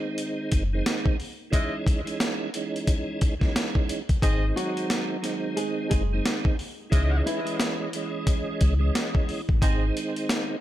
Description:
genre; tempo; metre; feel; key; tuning
hip hop, boom-bap hip-hop; 89 BPM; 4/4; swing 60% on 16ths; C# harmonic minor; A4 = 440 Hz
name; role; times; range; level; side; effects
tonewheel organ; accompaniment; 0.0-10.6 s; D#3 to D#5; -30 LUFS; right 3 dB; overdrive, chorus vibrato, slow rotary speaker, cassette tape, high-pass filter, low-pass filter
boom bap sampler-style drum kit; drums; 0.2-10.5 s; hi-hat, kick drum, snare drum; -25 LUFS; equal; none
sub bass with octave; bass; 0.5-9.9 s; F#1 to C#2; -24 LUFS; equal; none
warm horn section; stabs; 1.5-9.8 s; G#3 to D#5; -35 LUFS; equal; high-pass filter, low-pass filter, digital delay
nylon-string guitar; melody; 4.6-9.6 s; E3 to G#4; -33 LUFS; equal; high-pass filter, low-pass filter, digital delay
room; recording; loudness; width
little or no reverb; none; -23 LUFS; side -13 dB against mid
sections
0.0-10.6 A section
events
none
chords
0.0 G#; 1.5 C#madd9; 4.2 G#; 6.9 C#madd9; 9.6 G#

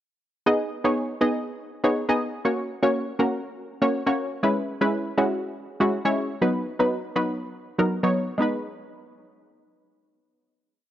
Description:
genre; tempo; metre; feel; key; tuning
pop; 121 BPM; 4/4; straight; G# minor; A4 = 440 Hz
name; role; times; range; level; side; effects
punchy chord stab; solo; 0.5-10.9 s; F#3 to D#5; -22 LUFS; equal; chorus, cassette tape
room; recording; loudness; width
light reverb, digital ambience; home recording on cassette; -22 LUFS; side -12 dB against mid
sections
0.5-8.4 verse; 8.4-10.9 final chord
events
none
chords
0.5 G#m; 2.5 F#; 4.4 E6; 6.4 B; 8.4 G#m

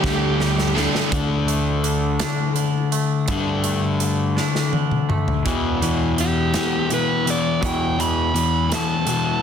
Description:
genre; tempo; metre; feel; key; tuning
quiet-loud alternative rock; 55 BPM (dotted quarters); 6/8; straight; E minor from 5.5 s; A4 = 435 Hz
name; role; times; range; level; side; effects
bluesy overdriven lead guitar; melody; 0.0-0.8, 6.2-9.4 s; G4 to B5; -24 LUFS; right 7 dB; distortion, slapback echo
distorted electric guitar; riff; 0.0-1.1 s; G3 to A4; -27 LUFS; right 15 dB; distortion
overdriven semi-hollow guitar; riff; 0.0-9.4 s; E2 to A4; -22 LUFS; left 7 dB; none
sludgy distorted guitar; riff; 0.0-1.1 s; D3 to D4; -26 LUFS; right 4 dB; overdrive
fuzz fingered electric bass; bass; 0.0-8.7 s; D2 to G2; -24 LUFS; right 1 dB; overdrive
big rock drum kit; drums; 0.0-9.2 s; hi-hat, kick drum, snare drum, toms; -26 LUFS; right 1 dB; none
twangy electric guitar; arpeggios; 1.1-9.4 s; E2 to D4; -28 LUFS; right 5 dB; warbly pitch drift, slapback echo
room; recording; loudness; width
light reverb, studio reverb; dense, heavily limited modern master; -18 LUFS; side -8 dB against mid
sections
0.0-1.1 A section; 1.1-5.5 B section; 5.5-9.4 C section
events
drum fill 0.0-1.1, 4.4-5.5; lead electric guitar solo 5.5-9.4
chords
0.0 Dsus4; 5.5 Em

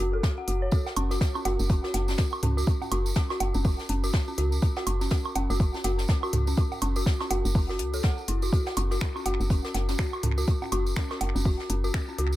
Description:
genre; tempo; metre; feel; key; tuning
minimal techno; 123 BPM; 4/4; swing 59% on 16ths; unclear; A4 = 438 Hz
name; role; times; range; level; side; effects
dark detuned synth bell; riff; 0.0-12.2 s; C#4 to F#5; -31 LUFS; equal; chorus, sidechain pumping, dub echo
woody FM bass; bass; 0.0-12.4 s; F#1 to C#2; -27 LUFS; equal; sidechain pumping
electronic kick drum; drums; 0.2-12.1 s; none; -24 LUFS; equal; none
soft brush drum kit; drums; 0.2-12.3 s; hi-hat, snare drum; -39 LUFS; left 2 dB; sidechain pumping on hats, high-pass filter on hats, high-pass filter on snare, high-pass filter on room
minimal click drum kit; drums; 0.5-12.3 s; finger snaps, hi-hat; -35 LUFS; left 2 dB; tape echo
tambourine; percussion; 0.7-12.4 s; none; -41 LUFS; right 4 dB; none
electronic woodblock and toms; percussion; 0.9-11.3 s; none; -34 LUFS; right 4 dB; analog delay
room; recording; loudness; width
little or no reverb; echo-heavy mix; -24 LUFS; side -15 dB against mid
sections
0.0-12.4 A section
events
none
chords
0.0 F#5

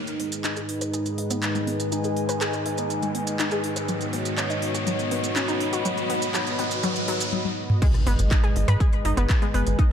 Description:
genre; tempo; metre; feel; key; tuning
melodic techno; 122 BPM; 4/4; straight; G# minor; A4 = 436 Hz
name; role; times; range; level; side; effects
warm analog pad; sustained chords; 0.0-9.9 s; G#3 to D#5; -31 LUFS; equal; chorus, sidechain pumping
analog drone; drone; 0.1-9.9 s; G#2 to D#3; -33 LUFS; equal; chorus, sidechain pumping
riser and impact; sound effects; 0.0-9.8 s; none; -32 LUFS; equal; none
warbly tape-like pad; texture; 0.0-9.9 s; D#4 to B5; -31 LUFS; equal; chorus, built-in reverb, sidechain pumping
house drum kit; drums; 0.1-9.9 s; crash cymbal, handclaps, hi-hat, rim click, toms; -30 LUFS; equal; small room ambience
maracas; percussion; 0.1-7.3 s; none; -35 LUFS; right 6 dB; none
warbly dusty pluck; arpeggios; 0.2-9.8 s; F#3 to B5; -30 LUFS; left 1 dB; chorus, sidechain pumping, ping-pong delay
electronic kick drum; drums; 7.8-9.9 s; none; -20 LUFS; equal; small room ambience
tight sequencer bass; bass; 8.1-9.8 s; G#1 to G#2; -21 LUFS; equal; sidechain pumping
room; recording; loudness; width
moderate lush hall reverb, RT60 2.0 s; dark, warm production; -22 LUFS; side -8 dB against mid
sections
0.0-7.8 A section; 7.8-9.9 B section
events
build-up 0.0-7.8; riser 0.0-7.3; filter sweep on synth arpeggio sound 0.0-7.8; drum fill 7.3-7.8; drop 7.8-9.9; impact 7.8-9.8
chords
0.0 G#m; 3.9 Badd9; 7.8 G#m

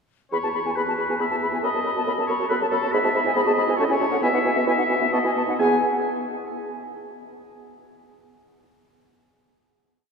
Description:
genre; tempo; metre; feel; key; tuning
quick classical-period movement for wind quintet; 137 BPM; 3/4; uneven beats, rubato; E major; A4 = 442 Hz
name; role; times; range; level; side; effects
silver concert flute; melody; 0.3-5.8 s; E5 to B5; -25 LUFS; left 3 dB; none
warm oboe; second line; 0.3-5.8 s; A4 to G#5; -27 LUFS; left 2 dB; none
dark clarinet; accompaniment; 0.3-5.8 s; B3 to A4; -29 LUFS; right 3 dB; none
warm French horn; accompaniment; 0.3-5.8 s; B3 to C#4; -31 LUFS; left 1 dB; none
mellow bassoon; bass; 0.3-5.8 s; E2 to B2; -26 LUFS; right 2 dB; none
room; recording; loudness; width
wet cathedral reverb, RT60 4.2 s; minimal, uncompressed stereo recording; -20 LUFS; side -5 dB against mid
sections
0.3-5.6 theme; 5.6-7.0 final chord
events
none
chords
0.3 E; 1.6 B7/F#; 2.9 E/G#; 3.8 F#m/A; 4.2 E5/B; 5.1 B; 5.6 E

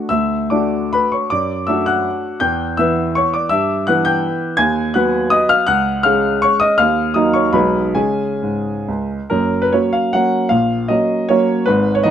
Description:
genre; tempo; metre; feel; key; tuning
classical, romantic triple-time dance for piano with dotted rhythms; 122-176 BPM; 3/4; rubato; D major, F# major from 4.6 s; A4 = 440 Hz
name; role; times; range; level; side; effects
warm grand piano; solo; 0.0-12.1 s; F#1 to G#6; -14 LUFS; equal; none
room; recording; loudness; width
light reverb; close, detailed microphones; -14 LUFS; side -9 dB against mid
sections
0.1-9.3 A section; 9.3-12.1 B section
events
none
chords
0.1 D; 1.3 D/F#; 2.4 Em; 3.5 Em/G; 4.6 B/D#; 5.7 C#; 6.8 D#m; 7.5 G#m7/B; 8.0 C#5; 9.3 F#; 10.5 F#/A#

